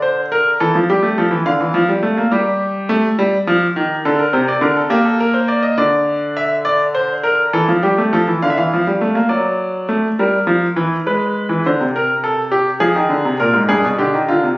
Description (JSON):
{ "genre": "classical, baroque-style two-part invention for grand piano", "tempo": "69 BPM (dotted quarters)", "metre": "6/8", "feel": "straight", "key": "unclear", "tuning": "A4 = 439 Hz", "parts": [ { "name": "clear concert grand piano", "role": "solo", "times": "0.0-14.6 s", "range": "G2 to F5", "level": "-13 LUFS", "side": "equal", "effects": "none" } ], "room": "wet stone room reverb, RT60 1.0 s", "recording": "recorded on a phone in the room, studio reverb, compression, nothing above 7.5 kHz", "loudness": "-13 LUFS", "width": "side -22 dB against mid", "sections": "0.0-9.3 A section; 9.3-14.6 B section", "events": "none", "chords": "0.0 Bbadd9/D; 0.6 A5/E; 1.5 Dm; 2.3 Gsus2; 3.2 Ebadd9; 4.0 D5; 4.9 Gm/Bb; 5.8 Dsus2; 6.6 Bbadd9/D; 7.5 A5/E; 8.4 Dm; 9.3 D/F#; 10.2 Gm; 11.1 E7/G#; 11.9 Am/C; 12.8 Fm; 13.7 G7", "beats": "| 0.58 1.45 | 2.32 3.19 | 4.05 4.91 | 5.78 6.65 | 7.52 8.40 | 9.29 10.18 | 11.06 11.93 | 12.80 13.67 | 14.57" }